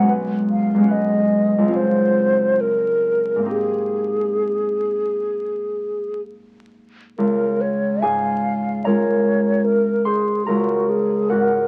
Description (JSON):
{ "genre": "classical, impressionist duo for flute and harp", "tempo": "63-76 BPM", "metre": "4/4", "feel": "rubato", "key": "Ab major, Db major from 7.2 s", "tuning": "A4 = 440 Hz", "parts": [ { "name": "mellow hollow silver concert flute", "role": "melody", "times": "0.0-11.7 s", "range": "Gb4 to F#5", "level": "-23 LUFS", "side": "equal", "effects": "none" }, { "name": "concert harp", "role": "accompaniment", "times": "0.0-11.7 s", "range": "B1 to C6", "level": "-22 LUFS", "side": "equal", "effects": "none" } ], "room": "moderate studio reverb, RT60 0.9 s", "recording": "very old 78 rpm record, vinyl crackle", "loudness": "-20 LUFS", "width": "mono", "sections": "0.0-7.2 A section; 7.2-11.7 B section", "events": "none", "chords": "0.1 B69; 1.8 Dbmaj7; 3.5 Abmaj9; 7.2 Db6; 10.5 Ab9/Db" }